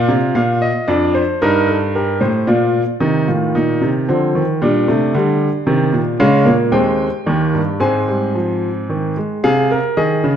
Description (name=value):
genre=classical, baroque-style 4-part fugue for grand piano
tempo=112 BPM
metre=3/4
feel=straight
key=Ab major from 6.2 s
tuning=A4 = 444 Hz
part: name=clear baby grand piano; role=solo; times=0.0-10.4 s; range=Eb2 to Ab5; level=-13 LUFS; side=equal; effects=none
room=moderate recital hall reverb, RT60 1.4 s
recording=dark, warm production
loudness=-14 LUFS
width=side -9 dB against mid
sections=0.0-3.0 A section; 3.0-9.4 B section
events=none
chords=0.0 Bb; 0.9 Dm/F; 1.4 Eb/G; 2.5 Bb; 3.0 Adim; 4.1 Dm7; 4.6 Gm/Bb; 5.7 Cm7; 6.2 Bbm/Db; 6.7 Ab/Eb; 7.3 Eb; 7.8 Ab; 9.4 Ab/C